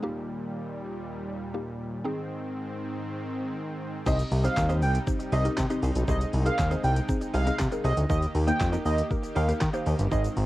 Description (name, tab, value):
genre	dance-pop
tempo	119 BPM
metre	4/4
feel	straight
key	Eb major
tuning	A4 = 440 Hz
part	mallet-like synth pluck	accompaniment	0.0-10.4 s	Bb3 to Eb5	-33 LUFS	left 1 dB	chorus, phaser, sidechain pumping, cassette tape
part	soft supersaw	sustained chords	0.0-10.5 s	Eb2 to G4	-35 LUFS	equal	sidechain pumping, cassette tape
part	airy dreamy lead	melody	4.1-10.2 s	Eb5 to G5	-31 LUFS	right 2 dB	chorus, sidechain pumping, cassette tape, analog delay
part	direct-recorded clean electric guitar	riff	4.1-10.4 s	Eb4 to Eb5	-38 LUFS	right 3 dB	wide subtle chorus, cassette tape
part	fat analog bass	bass	4.1-10.5 s	G1 to Eb3	-25 LUFS	equal	sidechain pumping
part	pop drum kit	drums	4.1-10.5 s	crash cymbal, handclaps, hi-hat, kick drum, shaker, snare drum	-31 LUFS	equal	cassette tape
part	egg shaker	percussion	4.1-10.4 s	none	-52 LUFS	left 6 dB	none
room	light reverb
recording	home recording on cassette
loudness	-25 LUFS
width	side -16 dB against mid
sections	0.0-4.1 A section; 4.1-10.5 B section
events	drop 4.1-10.5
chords	0.0 Eb; 2.0 Ab; 4.1 Cm; 6.1 Ab/C; 8.1 Eb